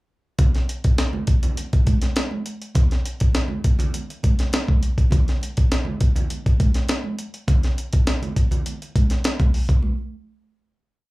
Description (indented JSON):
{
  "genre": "funk",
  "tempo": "102 BPM",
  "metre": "4/4",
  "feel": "straight",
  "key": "none",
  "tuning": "none",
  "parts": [
    { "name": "breakbeat sampler-style drum kit", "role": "drums", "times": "0.4-9.8 s", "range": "hi-hat, kick drum, snare drum", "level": "-18 LUFS", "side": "equal", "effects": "none" },
    { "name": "congas", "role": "percussion", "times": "0.4-10.1 s", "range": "none", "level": "-29 LUFS", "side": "right 2 dB", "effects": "slapback echo" }
  ],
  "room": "little or no reverb",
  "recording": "live gig heard through the venue's PA, club reverb",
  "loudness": "-19 LUFS",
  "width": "side -20 dB against mid",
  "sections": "0.4-9.8 breakdown; 9.8-11.1 final hit",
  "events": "none",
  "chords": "none"
}